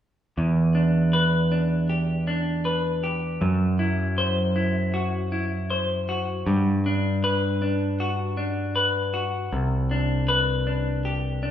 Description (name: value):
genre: rock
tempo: 79 BPM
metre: 4/4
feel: straight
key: E minor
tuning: A4 = 440 Hz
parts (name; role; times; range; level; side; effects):
- semi-hollow electric guitar; arpeggios; 0.4-11.5 s; C3 to C5; -25 LUFS; left 2 dB; spring reverb
- growling picked electric bass; bass; 0.4-11.5 s; C2 to G2; -24 LUFS; right 1 dB; overdrive
room: wet large studio reverb, RT60 1.2 s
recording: band playing live in one room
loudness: -22 LUFS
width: side -10 dB against mid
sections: 0.4-11.5 A section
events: none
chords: 0.4 Em7; 3.4 Esus2/F#; 6.5 Gmaj7; 9.5 Csus2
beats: | 0.38 1.14 1.90 2.66 | 3.43 4.19 4.95 5.71 | 6.47 7.24 8.00 8.76 | 9.53 10.29 11.05